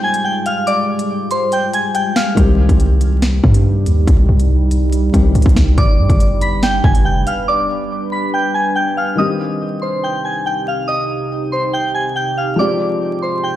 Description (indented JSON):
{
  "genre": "hip hop, drill",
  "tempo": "141 BPM",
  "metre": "4/4",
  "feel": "half-time",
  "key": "C harmonic minor",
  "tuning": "A4 = 440 Hz",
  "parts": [
    { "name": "soft synth bell", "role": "melody", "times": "0.0-2.4, 5.8-13.6 s", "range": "C5 to B6", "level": "-18 LUFS", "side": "equal", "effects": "chorus, phaser, digital delay" },
    { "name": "deep dark ambient pad", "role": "sustained chords", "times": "0.0-13.6 s", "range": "C3 to B4", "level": "-22 LUFS", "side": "right 2 dB", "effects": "chorus, built-in reverb" },
    { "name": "drill drum kit", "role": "drums", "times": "0.1-7.4 s", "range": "hi-hat, kick drum, snare drum", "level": "-14 LUFS", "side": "equal", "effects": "none" },
    { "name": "felt-muted upright piano", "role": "accompaniment", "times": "2.3-5.8, 9.2-13.6 s", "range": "Eb3 to G4", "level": "-22 LUFS", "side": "left 3 dB", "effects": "none" },
    { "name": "hard-hitting 808-style bass", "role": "bass", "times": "2.4-7.3 s", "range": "F1 to G2", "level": "-13 LUFS", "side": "equal", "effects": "none" }
  ],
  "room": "digital ambience",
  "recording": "played on a big sound system in a bare room, large studio reverb, vinyl crackle",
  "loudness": "-13 LUFS",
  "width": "side -13 dB against mid",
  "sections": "0.0-9.2 A section; 9.2-13.6 B section",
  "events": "break 0.0-2.4, 5.8-9.2",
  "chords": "0.0 Fmadd9; 2.4 Cm; 5.8 G; 9.2 Cm; 12.6 Fmadd9"
}